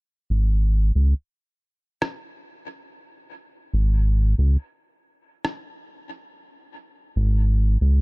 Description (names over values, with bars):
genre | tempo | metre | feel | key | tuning
ambient dub | 70 BPM | 4/4 | straight | unclear | A4 = 440 Hz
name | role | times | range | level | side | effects
round analog bass | bass | 0.3-8.0 s | G#1 to C#2 | -17 LUFS | equal | none
electronic rim click | drums | 2.0-5.6 s | none | -30 LUFS | equal | dub echo
room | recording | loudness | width
little or no reverb | dark, warm production | -20 LUFS | side -28 dB against mid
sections
0.3-8.0 A section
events
none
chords
none